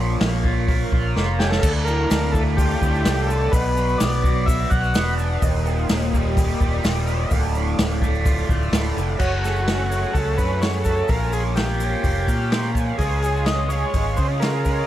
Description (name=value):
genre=psychedelic rock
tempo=127 BPM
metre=4/4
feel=straight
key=D phrygian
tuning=A4 = 440 Hz
part: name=mellow tonewheel organ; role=sustained chords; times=0.0-14.9 s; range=G#4 to Eb6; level=-33 LUFS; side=right 5 dB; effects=slow rotary speaker
part: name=raw garage guitar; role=riff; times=0.0-14.9 s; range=D2 to B4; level=-25 LUFS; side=equal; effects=overdrive, flanger, dub echo
part: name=fingered electric bass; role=bass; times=0.0-14.8 s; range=D1 to C#3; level=-23 LUFS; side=equal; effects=none
part: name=vintage drum kit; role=drums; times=0.2-14.8 s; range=crash cymbal, hi-hat, kick drum, snare drum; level=-23 LUFS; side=equal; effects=none
part: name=overdriven combo organ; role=melody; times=1.4-5.1, 9.2-14.9 s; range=F#4 to F#5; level=-26 LUFS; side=left 1 dB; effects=dub echo
part: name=egg shaker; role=percussion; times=1.6-14.8 s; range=none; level=-41 LUFS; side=left 6 dB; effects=none
room=small room ambience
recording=echo-heavy mix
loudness=-18 LUFS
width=side -13 dB against mid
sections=0.0-9.2 A section; 9.2-14.9 B section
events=drum fill 1.2-1.6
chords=0.0 Bbm; 1.6 Dm; 3.5 Bm; 5.4 Eb; 7.3 Dm; 9.2 F#m; 11.1 Bbm; 13.0 C#